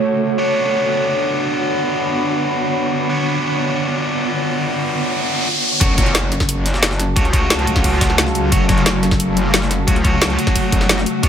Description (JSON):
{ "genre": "dark technical drum and bass", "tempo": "177 BPM", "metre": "4/4", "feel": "straight", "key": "F# harmonic minor", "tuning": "A4 = 441 Hz", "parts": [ { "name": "swarming drone", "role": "sustained chords", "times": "0.0-11.3 s", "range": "C#3 to C#5", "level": "-22 LUFS", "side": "equal", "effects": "built-in reverb, sidechain pumping" }, { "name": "tight distorted guitar", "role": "stabs", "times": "0.0-11.3 s", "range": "A3 to C#5", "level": "-21 LUFS", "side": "right 1 dB", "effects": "distortion, tape echo" }, { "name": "warbly tape-like pad", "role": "texture", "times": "0.0-11.3 s", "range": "D3 to B5", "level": "-24 LUFS", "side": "equal", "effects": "chorus, built-in reverb, sidechain pumping" }, { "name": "riser and impact", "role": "sound effects", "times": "4.4-7.2 s", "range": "none", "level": "-24 LUFS", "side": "equal", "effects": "none" }, { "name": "metallic wobble bass", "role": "bass", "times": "5.8-11.3 s", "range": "F#1 to C#2", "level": "-19 LUFS", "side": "equal", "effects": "distortion, chorus, overdrive, sidechain pumping" }, { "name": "drum and bass drum kit", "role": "drums", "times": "5.8-11.3 s", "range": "hi-hat, snare drum", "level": "-19 LUFS", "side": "equal", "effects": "overdrive, low-pass filter on cymbals, low-pass filter on hats, low-pass filter on snare" }, { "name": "electronic kick drum", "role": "drums", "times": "5.8-11.3 s", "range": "none", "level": "-17 LUFS", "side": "equal", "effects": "overdrive" }, { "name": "jungle sampler-style drum kit", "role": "drums", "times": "5.8-11.3 s", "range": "hi-hat, snare drum", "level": "-27 LUFS", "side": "left 1 dB", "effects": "none" } ], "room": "wet cathedral reverb, RT60 4.7 s", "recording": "dreamy mix soaked in reverb", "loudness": "-14 LUFS", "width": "side -8 dB against mid", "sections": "0.0-5.8 A section; 5.8-11.3 B section", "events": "riser 4.4-5.8; drop 5.8-11.3; impact 5.8-7.2", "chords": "0.4 Bmadd9; 5.8 F#m" }